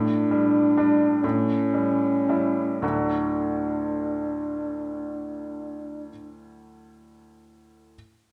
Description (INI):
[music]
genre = classical, romantic duo for French horn and grand piano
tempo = 35-46 BPM (dotted quarters)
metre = 6/8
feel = rubato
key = D major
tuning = A4 = 444 Hz
[part]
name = mellow French horn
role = melody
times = 0.0-6.1 s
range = C#4 to D4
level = -26 LUFS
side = equal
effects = none
[part]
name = bright baby grand piano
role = accompaniment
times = 0.0-8.0 s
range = D2 to F#4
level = -31 LUFS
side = equal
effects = none
[sound]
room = wet recital hall reverb, RT60 1.5 s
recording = none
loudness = -24 LUFS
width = mono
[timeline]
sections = 0.0-2.8 A section; 2.8-5.8 B section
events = slowing down 0.0-2.8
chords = 0.0 A7sus4; 1.2 A7; 2.8 D